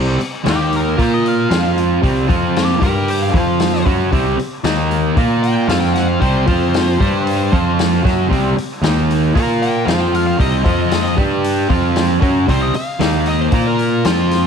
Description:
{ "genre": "blues rock power trio and southern rock", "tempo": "115 BPM", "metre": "4/4", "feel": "straight", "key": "C minor", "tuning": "A4 = 440 Hz", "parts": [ { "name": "distorted electric guitar", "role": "riff", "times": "0.0-14.5 s", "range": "C3 to Bb4", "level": "-16 LUFS", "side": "right 1 dB", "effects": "distortion" }, { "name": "fuzz picked electric bass", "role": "bass", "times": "0.0-14.5 s", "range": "C2 to Bb2", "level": "-19 LUFS", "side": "right 1 dB", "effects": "overdrive" }, { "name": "vintage drum kit", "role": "drums", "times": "0.2-14.4 s", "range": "hi-hat, kick drum, snare drum", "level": "-20 LUFS", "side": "left 2 dB", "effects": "none" }, { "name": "dark smooth lead guitar", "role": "melody", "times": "0.5-14.5 s", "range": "F4 to G5", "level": "-24 LUFS", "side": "left 3 dB", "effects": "wah, overdrive" } ], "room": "light reverb, studio reverb", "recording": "1960s-style stereo", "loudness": "-13 LUFS", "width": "side -7 dB against mid", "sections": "0.0-14.5 A section", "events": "none", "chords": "0.5 Eb5; 1.0 Bb5; 1.5 F5; 2.0 C5; 2.3 F5; 2.8 G5; 3.3 F5; 3.9 C5; 4.6 Eb5; 5.2 Bb5; 5.7 F5; 6.2 C5; 6.5 F5; 7.0 G5; 7.5 F5; 8.0 C5; 8.8 Eb5; 9.4 Bb5; 9.9 F5; 10.4 Cm; 10.7 F5; 11.2 G5; 11.7 F5; 12.2 C5; 13.0 Eb5; 13.5 Bb5" }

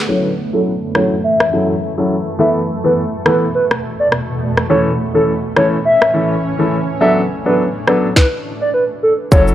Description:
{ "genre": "dancehall", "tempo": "104 BPM", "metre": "4/4", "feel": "swing 56% on 16ths", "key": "F# minor", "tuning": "A4 = 440 Hz", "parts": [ { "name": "granular cloud pad", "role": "sustained chords", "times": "0.0-8.2 s", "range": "E2 to D4", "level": "-22 LUFS", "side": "right 1 dB", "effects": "built-in reverb, sidechain pumping, low-pass filter" }, { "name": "hollow clarinet-like synth lead", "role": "melody", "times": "0.1-9.4 s", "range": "A4 to E5", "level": "-16 LUFS", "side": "equal", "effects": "chorus, low-pass filter, tape echo" }, { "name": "warm concert grand piano", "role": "accompaniment", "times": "0.1-9.5 s", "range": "E3 to A4", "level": "-16 LUFS", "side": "left 1 dB", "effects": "low-pass filter" }, { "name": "island pop drum kit", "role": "drums", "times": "0.9-9.5 s", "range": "kick drum, rim click, shaker, snare drum", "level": "-14 LUFS", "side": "equal", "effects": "none" }, { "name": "saturated sub bass", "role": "bass", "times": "9.3-9.5 s", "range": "F#1", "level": "-16 LUFS", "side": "equal", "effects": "none" } ], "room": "light reverb, digital ambience", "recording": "dry, gritty hardware recording", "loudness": "-13 LUFS", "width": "side -12 dB against mid", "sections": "0.1-9.3 A section", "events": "filter sweep 0.1-9.3", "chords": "0.1 F#m7; 2.4 Esus4; 4.7 A; 7.0 Bm7" }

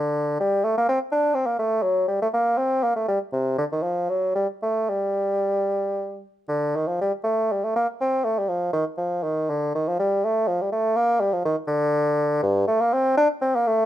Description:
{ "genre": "classical, baroque-style fantasia for unaccompanied bassoon", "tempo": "81 BPM (dotted quarters)", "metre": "6/8", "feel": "rubato", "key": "G minor", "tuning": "A4 = 443 Hz", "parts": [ { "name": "warm bassoon", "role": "solo", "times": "0.0-13.9 s", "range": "G2 to D4", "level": "-21 LUFS", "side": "equal", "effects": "none" } ], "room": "light reverb", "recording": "minimal, uncompressed stereo recording", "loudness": "-21 LUFS", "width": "side -12 dB against mid", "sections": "0.0-6.5 A section; 6.5-13.9 A section", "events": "none", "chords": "none" }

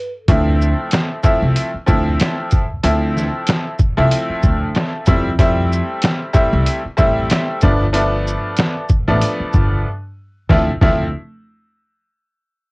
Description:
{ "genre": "hip hop, boom-bap hip-hop", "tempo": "94 BPM", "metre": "4/4", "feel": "swing 56% on 16ths", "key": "D dorian", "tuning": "A4 = 440 Hz", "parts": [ { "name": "bright upright piano", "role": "accompaniment", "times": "0.3-11.1 s", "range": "F3 to E4", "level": "-19 LUFS", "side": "equal", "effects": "high-pass filter, low-pass filter, cassette tape" }, { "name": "upright bass", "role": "bass", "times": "0.3-11.1 s", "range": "G1 to F2", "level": "-18 LUFS", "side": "equal", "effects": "none" }, { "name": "trip hop sampler-style drum kit", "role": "drums", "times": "0.3-11.0 s", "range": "hi-hat, kick drum, shaker, snare drum", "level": "-16 LUFS", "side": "equal", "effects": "cassette tape" } ], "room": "light reverb", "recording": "home recording on cassette", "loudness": "-14 LUFS", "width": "side -27 dB against mid", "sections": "0.3-10.5 A section; 10.5-12.7 B section", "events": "break 0.0, 9.9-10.5", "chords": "0.3 Dm9; 5.1 Fmaj7; 7.6 G9; 10.5 Dm9" }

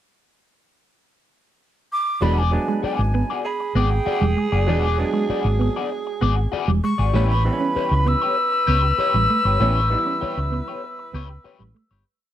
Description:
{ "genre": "funk", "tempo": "98 BPM", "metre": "4/4", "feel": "straight", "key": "E mixolydian", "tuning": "A4 = 440 Hz", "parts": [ { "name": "mellow silver concert flute", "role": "melody", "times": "1.9-11.4 s", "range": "G5 to E6", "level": "-23 LUFS", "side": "left 1 dB", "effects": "tape echo" }, { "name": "electric guitar at the edge of break-up", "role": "accompaniment", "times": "2.2-12.0 s", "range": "F#4 to D5", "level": "-27 LUFS", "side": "left 9 dB", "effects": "wah" }, { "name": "mellow electric guitar", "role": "riff", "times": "2.2-11.8 s", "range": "E3 to C#4", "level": "-27 LUFS", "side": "right 4 dB", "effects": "spring reverb" }, { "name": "overdriven clav", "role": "stabs", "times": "2.2-10.7 s", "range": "E3 to E4", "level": "-29 LUFS", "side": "right 2 dB", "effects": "tape echo" }, { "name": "hollow-body short-scale fingered electric bass", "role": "bass", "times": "2.2-12.0 s", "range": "E1 to C#2", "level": "-20 LUFS", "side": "equal", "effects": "none" }, { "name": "growling tenor saxophone", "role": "second line", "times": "3.4-11.7 s", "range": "G#4 to B4", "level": "-28 LUFS", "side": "right 5 dB", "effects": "tape echo" } ], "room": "moderate small room reverb, RT60 0.5 s", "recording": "none", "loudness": "-18 LUFS", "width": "side -11 dB against mid", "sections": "0.0-2.2 pickup bar; 2.2-12.1 A section", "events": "fade-out 9.6-12.1", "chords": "0.0 N.C.; 2.2 E9; 7.1 A9" }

